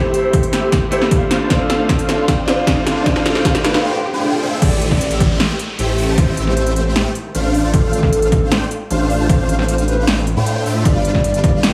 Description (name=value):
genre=future bass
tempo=154 BPM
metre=4/4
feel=half-time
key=unclear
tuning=A4 = 440 Hz
part: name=soft octave-layered synth lead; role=melody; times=0.0-11.6 s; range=A4 to D5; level=-26 LUFS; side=equal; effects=chorus, phaser, cassette tape, sidechain pumping, tape echo
part: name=bright grand piano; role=accompaniment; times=0.0-4.6 s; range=A3 to C5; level=-25 LUFS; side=equal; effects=sidechain pumping, analog delay
part: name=supersaw chords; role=riff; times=0.0-11.7 s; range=G3 to A5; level=-23 LUFS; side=equal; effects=ensemble chorus, sidechain pumping, low-pass filter, analog delay
part: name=riser and downlifter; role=sound effects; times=1.2-7.7 s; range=none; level=-30 LUFS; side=equal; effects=none
part: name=big-room dance drum kit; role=drums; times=0.1-11.7 s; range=crash cymbal, hi-hat, snare drum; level=-22 LUFS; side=equal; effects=overdrive
part: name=electronic kick drum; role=drums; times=0.3-11.5 s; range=none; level=-20 LUFS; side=equal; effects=overdrive
part: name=detuned saw bass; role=bass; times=4.6-11.7 s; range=G1 to A2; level=-21 LUFS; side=equal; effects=chorus, sidechain pumping
room=wet plate reverb, RT60 1.3 s, digital ambience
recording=dreamy mix soaked in reverb, studio reverb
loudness=-16 LUFS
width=mono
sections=0.0-4.6 A section; 4.6-11.7 B section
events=build-up 0.0-4.6; drum fill 0.0-3.8; filter sweep on supersaw synth 0.0-4.6; break 3.8-4.6; drop 4.6-11.7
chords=0.0 Am7; 10.9 G7